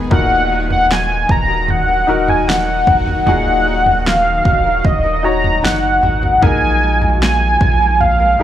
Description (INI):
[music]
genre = pop ballad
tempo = 76 BPM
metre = 4/4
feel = straight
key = Eb minor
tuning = A4 = 440 Hz
[part]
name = clear baby grand piano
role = accompaniment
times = 0.0-8.4 s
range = Bb2 to Db5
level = -21 LUFS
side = left 4 dB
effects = slapback echo
[part]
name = shimmering ambient pad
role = sustained chords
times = 0.0-8.4 s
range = Bb2 to Gb4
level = -27 LUFS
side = equal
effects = chorus, built-in reverb, phaser
[part]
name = nylon-string guitar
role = arpeggios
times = 0.0-8.4 s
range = Bb2 to Bb4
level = -28 LUFS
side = left 1 dB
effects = slapback echo
[part]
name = warm sub bass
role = bass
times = 0.0-8.4 s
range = Eb1 to Bb1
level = -20 LUFS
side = equal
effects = none
[part]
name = warm velvety synth lead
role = melody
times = 0.1-8.4 s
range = Eb5 to Bb5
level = -14 LUFS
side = equal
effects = chorus, slapback echo
[part]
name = deep house drum kit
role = drums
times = 0.1-8.2 s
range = kick drum, snare drum, toms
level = -17 LUFS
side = right 1 dB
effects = none
[sound]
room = little or no reverb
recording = live gig heard through the venue's PA, club reverb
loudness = -11 LUFS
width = side -11 dB against mid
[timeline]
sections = 0.0-8.4 A section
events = none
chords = 0.1 Ebm; 6.4 Bb7sus4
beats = | 0.11 0.90 1.69 2.48 | 3.27 4.06 4.85 5.64 | 6.43 7.22 8.01